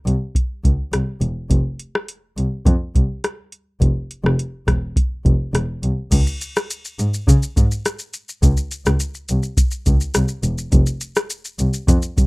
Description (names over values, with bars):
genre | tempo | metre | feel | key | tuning
indie pop, bedroom pop | 104 BPM | 4/4 | straight | unclear | A4 = 439 Hz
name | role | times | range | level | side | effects
warm double bass | bass | 0.1-12.3 s | E1 to Db3 | -19 LUFS | equal | none
soft vintage rhythm box | drums | 0.1-12.3 s | crash cymbal, hi-hat, kick drum, rim click, shaker | -18 LUFS | equal | none
room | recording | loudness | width
little or no reverb | rough home demo mix | -17 LUFS | side -26 dB against mid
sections
0.0-6.1 A section; 6.1-12.3 B section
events
none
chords
none